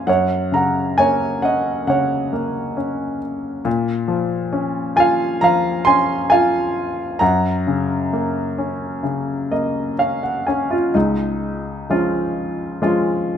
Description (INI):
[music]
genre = classical, lyrical solo piano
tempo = 66 BPM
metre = 4/4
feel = uneven beats, rubato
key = unclear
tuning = A4 = 440 Hz
[part]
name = clear grand piano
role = solo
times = 0.0-13.4 s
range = Db2 to C6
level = -17 LUFS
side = equal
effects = none
[sound]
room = light reverb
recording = close, detailed microphones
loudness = -17 LUFS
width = side -8 dB against mid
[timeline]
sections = 0.0-10.9 A section; 10.9-13.4 B section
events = grand piano fill 9.0-10.9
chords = 0.1 Gb; 3.7 Bbm; 7.2 Gb; 10.9 Db